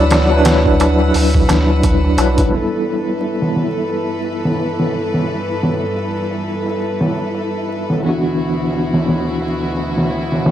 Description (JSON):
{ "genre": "trip hop", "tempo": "87 BPM", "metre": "4/4", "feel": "swing 58% on 16ths", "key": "unclear", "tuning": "A4 = 440 Hz", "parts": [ { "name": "tine electric piano", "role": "accompaniment", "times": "0.0-10.5 s", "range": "E3 to D5", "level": "-18 LUFS", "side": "equal", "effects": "medium stereo tremolo, vintage 12-bit sampler grit, tape echo" }, { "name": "rich chamber string section", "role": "sustained chords", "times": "0.0-10.5 s", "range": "D2 to E6", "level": "-23 LUFS", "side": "equal", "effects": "none" }, { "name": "soft dub sub bass", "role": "bass", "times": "0.0-2.5 s", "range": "B1 to D2", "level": "-16 LUFS", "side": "equal", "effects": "tube saturation" }, { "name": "flickering grainy texture", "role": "texture", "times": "0.0-10.5 s", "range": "D4 to E4", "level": "-28 LUFS", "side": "left 1 dB", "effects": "built-in reverb" }, { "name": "trip hop sampler-style drum kit", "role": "drums", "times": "0.1-10.5 s", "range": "hi-hat, kick drum, snare drum", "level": "-18 LUFS", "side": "equal", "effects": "overdrive, low-pass filter on hats, low-pass filter on snare, low-pass filter on kick, low-pass filter on room" }, { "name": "darbuka", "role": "percussion", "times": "0.1-2.5 s", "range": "none", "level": "-24 LUFS", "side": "right 3 dB", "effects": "none" } ], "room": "light reverb, digital ambience", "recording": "dry, gritty hardware recording, vinyl crackle", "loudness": "-14 LUFS", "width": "side -11 dB against mid", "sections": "0.0-2.5 A section; 2.5-10.5 B section", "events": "none", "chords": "0.0 D69; 2.5 G69; 8.0 D69" }